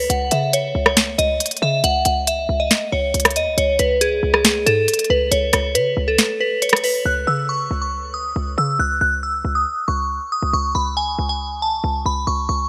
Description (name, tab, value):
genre	hip hop, trap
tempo	138 BPM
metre	4/4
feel	half-time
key	C# minor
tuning	A4 = 441 Hz
part	glassy synth bell	melody	0.0-12.7 s	G#4 to F#6	-21 LUFS	equal	chorus, phaser, low-pass filter, delay
part	short 808-style bass	bass	0.0-12.7 s	C#2 to C#3	-26 LUFS	equal	none
part	trap drum kit	drums	0.1-6.9 s	hi-hat, rim click, snare drum	-20 LUFS	equal	none
room	light reverb, digital ambience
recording	none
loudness	-19 LUFS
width	mono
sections	0.0-7.1 A section; 7.1-12.7 B section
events	kick muted 6.2-7.1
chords	0.1 C#sus2; 3.6 C#5; 7.1 C#sus2